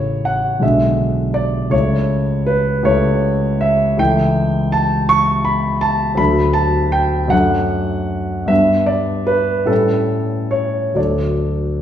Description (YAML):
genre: classical, romantic character piece for solo piano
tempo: 45-56 BPM (dotted quarters)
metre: 6/8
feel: rubato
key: A major, D major from 4.0 s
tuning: A4 = 440 Hz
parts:
  - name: warm concert grand piano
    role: solo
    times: 0.0-11.8 s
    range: A1 to C#6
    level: -14 LUFS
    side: equal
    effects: none
room: wet recital hall reverb, RT60 1.5 s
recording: heard from further back in the room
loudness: -14 LUFS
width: side -10 dB against mid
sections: 0.0-11.8 A section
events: none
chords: 0.0 A; 0.6 G#dim/B; 1.7 A/C#; 6.2 D; 7.3 D/F#; 8.5 G6; 9.7 A7; 11.0 D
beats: 0.62 | 1.73 2.86 | 3.99 5.10 | 6.19 7.32 | 8.50 9.70 | 10.97